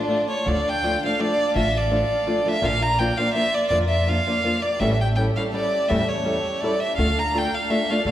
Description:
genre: mexican folk, mariachi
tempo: 166 BPM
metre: 3/4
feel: swing 55% on 8ths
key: D harmonic minor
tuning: A4 = 438 Hz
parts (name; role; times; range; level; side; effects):
- clear violin; melody; 0.0-8.1 s; D4 to Bb5; -23 LUFS; right 1 dB; none
- nylon-string guitar; accompaniment; 0.0-8.1 s; A2 to A4; -24 LUFS; left 1 dB; none
- rich chamber violin section; sustained chords; 0.0-8.1 s; A3 to A5; -32 LUFS; equal; none
- upright bass; bass; 0.5-8.1 s; A1 to F2; -26 LUFS; equal; none
room: wet recital hall reverb, RT60 1.4 s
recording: recorded in a church or concert hall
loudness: -19 LUFS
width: side -12 dB against mid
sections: 0.5-8.1 A section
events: none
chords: 0.5 Dm; 2.6 Bb; 4.8 A7; 7.0 Dm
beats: 0.09 | 0.46 0.83 1.19 | 1.55 1.91 2.27 | 2.62 2.98 3.34 | 3.70 4.07 4.43 | 4.80 5.17 5.53 | 5.89 6.25 6.62 | 6.98 7.33 7.69 | 8.05

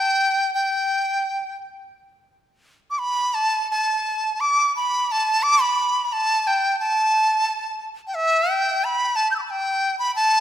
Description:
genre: chinese traditional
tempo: 88 BPM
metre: 4/4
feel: rubato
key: unclear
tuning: A4 = 437 Hz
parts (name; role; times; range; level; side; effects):
- reedy dizi; solo; 0.0-10.4 s; E5 to G6; -19 LUFS; equal; none
room: moderate scoring stage reverb, RT60 1.6 s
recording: none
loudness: -19 LUFS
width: side -11 dB against mid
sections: 0.0-10.4 A section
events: none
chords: none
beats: | 0.56 1.25 1.94 2.64 | 3.34 4.04 4.74 5.43 | 6.11 6.79 7.47 8.14 | 8.81 9.48 10.15

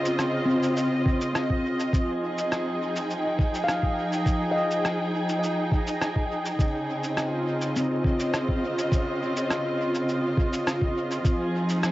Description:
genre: ambient dub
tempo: 103 BPM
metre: 4/4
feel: straight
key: F minor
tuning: A4 = 440 Hz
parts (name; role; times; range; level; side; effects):
- dark symphonic string section; sustained chords; 0.0-11.9 s; Db3 to G5; -26 LUFS; equal; cassette tape
- bubbling stepped-filter texture; texture; 0.0-11.3 s; Eb5; -35 LUFS; right 2 dB; chorus, built-in reverb, cassette tape, plate reverb
- electronic cabasa and rim click; drums; 0.1-11.9 s; none; -32 LUFS; equal; cassette tape, dub echo
- handpan; arpeggios; 0.5-10.0 s; C4 to F5; -29 LUFS; left 1 dB; cassette tape, analog delay, plate reverb
- electronic kick drum; drums; 1.1-11.4 s; none; -24 LUFS; equal; cassette tape
room: moderate small room reverb, RT60 0.6 s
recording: home recording on cassette, vinyl crackle, nothing above 7.8 kHz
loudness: -23 LUFS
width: side -16 dB against mid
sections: 0.0-11.3 A section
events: none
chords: 0.0 Dbmaj9; 1.9 Fm9; 6.6 Dbmaj9; 11.3 Fm7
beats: 0.19 0.77 1.35 | 1.93 2.52 3.10 3.68 | 4.26 4.85 5.43 6.01 | 6.59 7.18 7.76 8.34 | 8.92 9.51 10.09 10.67 | 11.25 11.84

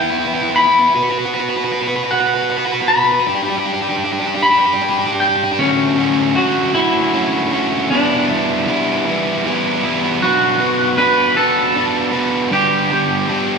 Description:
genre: rock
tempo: 52 BPM (dotted quarters)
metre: 6/8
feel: straight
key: D major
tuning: A4 = 440 Hz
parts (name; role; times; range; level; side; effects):
- twangy electric guitar; melody; 0.0-13.6 s; C#4 to B5; -16 LUFS; left 1 dB; slapback echo
- overdriven electric guitar; riff; 0.0-13.6 s; D2 to B4; -16 LUFS; right 1 dB; slapback echo
room: wet lush hall reverb, RT60 1.9 s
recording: big arena sound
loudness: -13 LUFS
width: side -5 dB against mid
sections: 0.0-5.6 A section; 5.6-13.6 B section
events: build-up 0.0-5.6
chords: 0.0 Em; 1.0 B5; 3.3 G; 5.6 Dmaj7; 7.9 Em7; 10.2 Bm; 12.5 G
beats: | 0.96 2.12 | 3.28 4.44 | 5.59 6.75 | 7.91 9.06 | 10.22 11.37 | 12.52

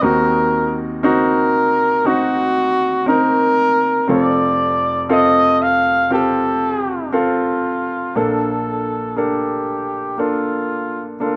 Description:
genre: pop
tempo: 59 BPM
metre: 4/4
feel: straight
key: Bb major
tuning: A4 = 442 Hz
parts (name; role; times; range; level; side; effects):
- trumpet with bucket mute; melody; 0.0-11.4 s; F4 to F5; -20 LUFS; equal; plate reverb
- clear baby grand piano; accompaniment; 0.0-11.4 s; F1 to Bb4; -21 LUFS; equal; plate reverb
room: moderate studio reverb, RT60 0.5 s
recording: rough home demo mix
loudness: -17 LUFS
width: mono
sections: 0.0-8.2 A section; 8.2-11.4 B section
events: none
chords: 0.0 Ebm6; 4.1 F; 8.2 Bbmaj7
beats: | 0.02 1.04 2.05 3.07 | 4.09 5.10 6.12 7.14 | 8.15 9.17 10.19 11.21

